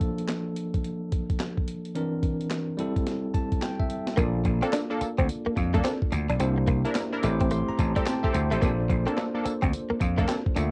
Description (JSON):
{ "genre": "R&B, new jack swing", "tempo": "108 BPM", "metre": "4/4", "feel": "swing 63% on 16ths", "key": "unclear", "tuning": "A4 = 440 Hz", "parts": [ { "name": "bell-like tine electric piano", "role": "accompaniment", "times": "0.0-10.7 s", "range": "E3 to D6", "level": "-33 LUFS", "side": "equal", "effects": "cassette tape" }, { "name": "breakbeat sampler-style drum kit", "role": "drums", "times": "0.0-10.7 s", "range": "handclaps, hi-hat, kick drum, snare drum, tambourine", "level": "-31 LUFS", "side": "equal", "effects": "cassette tape" }, { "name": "direct-recorded clean electric guitar", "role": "riff", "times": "4.2-10.6 s", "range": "G3 to D4", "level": "-32 LUFS", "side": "equal", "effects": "analog chorus, cassette tape" }, { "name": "vintage slap bass", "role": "bass", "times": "4.2-10.7 s", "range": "A1 to F2", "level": "-29 LUFS", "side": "equal", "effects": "none" }, { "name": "funky polysynth comp", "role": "stabs", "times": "4.6-10.4 s", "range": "Bb3 to Bb4", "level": "-35 LUFS", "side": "equal", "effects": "chorus, cassette tape, tape echo" } ], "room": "light reverb", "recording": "home recording on cassette", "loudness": "-27 LUFS", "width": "mono", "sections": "0.0-4.2 A section; 4.2-10.7 B section", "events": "tine electric piano fill 3.1-4.2, 7.0-8.6", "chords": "0.0 Bbmaj7; 2.0 C9; 2.8 Am7; 4.2 Bbmaj7; 6.4 C9; 7.2 Am7; 8.6 Bbmaj7" }